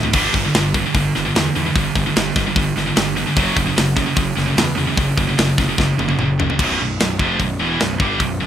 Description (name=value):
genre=heavy metal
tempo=149 BPM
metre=4/4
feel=straight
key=B minor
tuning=A4 = 439 Hz
part: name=scooped high-gain guitar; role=riff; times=0.0-8.5 s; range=B1 to G3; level=-24 LUFS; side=left 13 dB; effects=distortion
part: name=scooped high-gain guitar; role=riff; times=0.0-8.5 s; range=B1 to G3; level=-19 LUFS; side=right 4 dB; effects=distortion
part: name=tight metal drum kit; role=drums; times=0.0-8.3 s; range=crash cymbal, hi-hat, kick drum, snare drum, toms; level=-20 LUFS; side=left 1 dB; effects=none
part: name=fuzz picked electric bass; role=bass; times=0.1-8.5 s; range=B0 to E2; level=-25 LUFS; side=left 1 dB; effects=overdrive
room=light reverb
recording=rough home demo mix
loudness=-15 LUFS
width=side -10 dB against mid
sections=0.0-6.6 A section; 6.6-8.5 B section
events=drum fill 5.8-6.6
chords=0.1 G5; 3.4 F#5; 6.6 Bm